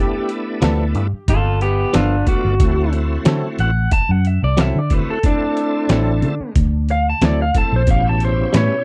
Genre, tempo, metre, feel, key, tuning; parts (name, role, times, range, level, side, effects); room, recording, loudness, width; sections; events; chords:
straight-eighth soul blues; 91 BPM; 4/4; swing 54% on 16ths; D mixolydian; A4 = 443 Hz
electric guitar through a small old amp; melody; 0.0-8.8 s; B3 to A5; -24 LUFS; equal
bright tonewheel organ; accompaniment; 0.0-8.8 s; B2 to A4; -27 LUFS; equal; slow rotary speaker, overdrive, chorus vibrato
trip hop sampler-style drum kit; drums; 0.3-8.7 s; hi-hat, kick drum, snare drum; -20 LUFS; equal
direct-recorded clean electric guitar; stabs; 0.6-8.8 s; F3 to B4; -24 LUFS; equal
vintage muted fingered electric bass; bass; 0.6-8.7 s; G1 to D3; -20 LUFS; equal
little or no reverb; dry, close 1970s-style studio recording; -17 LUFS; mono
0.0-8.8 A section
clean electric guitar solo 0.0-8.8
0.0 G9; 2.6 D9; 7.9 A9